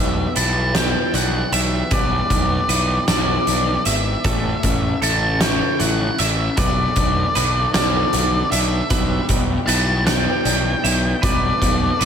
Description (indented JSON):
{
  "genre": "post-rock",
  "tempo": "52 BPM (dotted quarters)",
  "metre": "6/8",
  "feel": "straight",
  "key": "unclear",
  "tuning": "A4 = 443 Hz",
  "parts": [
    { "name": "octave-fuzz lead guitar", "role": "melody", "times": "0.0-12.1 s", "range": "D5 to A5", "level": "-22 LUFS", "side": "left 1 dB", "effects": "distortion, tape echo" },
    { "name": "dark symphonic string section", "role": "sustained chords", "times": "0.0-12.1 s", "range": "C#3 to A4", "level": "-32 LUFS", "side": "left 2 dB", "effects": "none" },
    { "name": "electric guitar through a small old amp", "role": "arpeggios", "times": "0.0-12.1 s", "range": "G2 to B4", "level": "-28 LUFS", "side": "left 3 dB", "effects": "tape echo" },
    { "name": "twelve-string electric guitar", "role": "arpeggios", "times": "0.0-12.1 s", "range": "A4 to E5", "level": "-30 LUFS", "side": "right 7 dB", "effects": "wide subtle chorus, tape echo" },
    { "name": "fuzz picked electric bass", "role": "bass", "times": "0.0-12.1 s", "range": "G#1 to B1", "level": "-22 LUFS", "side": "equal", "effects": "overdrive" },
    { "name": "oversized low-tuned drum kit", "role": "drums", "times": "0.4-12.1 s", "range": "hi-hat, kick drum, snare drum", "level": "-20 LUFS", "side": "right 1 dB", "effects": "none" }
  ],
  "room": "light reverb, small room ambience",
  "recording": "none",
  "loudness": "-16 LUFS",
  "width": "side -8 dB against mid",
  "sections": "0.0-12.1 A section",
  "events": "none",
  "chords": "0.0 G6/B; 4.2 A; 6.6 Bm7; 8.9 G6/B"
}